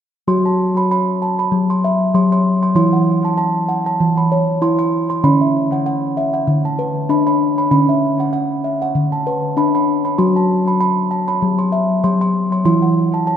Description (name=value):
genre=world meditative, meditative tuned percussion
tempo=97 BPM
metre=4/4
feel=swing 56% on 16ths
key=unclear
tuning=A4 = 440 Hz
part: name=steel tongue drum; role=solo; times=0.3-13.4 s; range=D3 to B#5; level=-14 LUFS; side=equal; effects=tape echo
room=wet echo chamber reverb, RT60 2.1 s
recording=none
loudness=-14 LUFS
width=side -9 dB against mid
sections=0.3-13.4 A section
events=none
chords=0.3 F#m; 2.8 E5; 5.2 D; 10.2 F#m; 12.7 E5